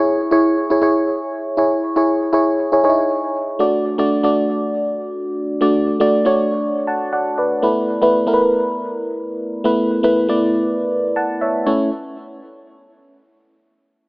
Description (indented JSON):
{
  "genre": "pop",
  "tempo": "119 BPM",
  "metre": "4/4",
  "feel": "swing 55% on 16ths",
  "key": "A major",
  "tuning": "A4 = 438 Hz",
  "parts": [
    { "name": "FM electric piano", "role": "solo", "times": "0.0-11.9 s", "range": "A3 to A5", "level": "-15 LUFS", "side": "equal", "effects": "chorus, phaser, tape echo" }
  ],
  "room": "moderate plate reverb, RT60 2.9 s",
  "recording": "AM radio sound",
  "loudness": "-15 LUFS",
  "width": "side -25 dB against mid",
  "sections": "0.0-3.6 A section; 3.6-11.7 B section; 11.7-13.7 C section",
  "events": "none",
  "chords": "0.0 C#m; 3.6 D; 7.6 Asus2; 11.7 A",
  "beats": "0.07 0.57 1.08 | 1.58 2.08 2.59 3.09 | 3.60 4.10 4.61 5.11 | 5.62 6.12 6.62 7.13 | 7.63 8.14 8.64 9.14 | 9.65 10.15 10.66 11.16 | 11.66"
}